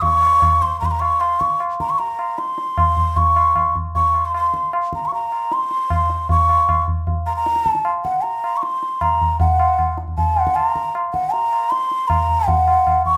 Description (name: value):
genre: indian classical, Hindustani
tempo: 154 BPM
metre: 4/4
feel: straight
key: unclear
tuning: A4 = 438 Hz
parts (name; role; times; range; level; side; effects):
- mellow hollow bansuri; melody; 0.0-13.2 s; Gb5 to Db6+21c; -19 LUFS; equal; none
- tabla; percussion; 0.0-13.2 s; none; -24 LUFS; equal; none
room: wet large studio reverb, RT60 0.8 s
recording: band playing live in one room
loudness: -18 LUFS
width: mono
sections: 0.0-9.4 A section; 9.4-13.2 B section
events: speeding up 0.0-13.2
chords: none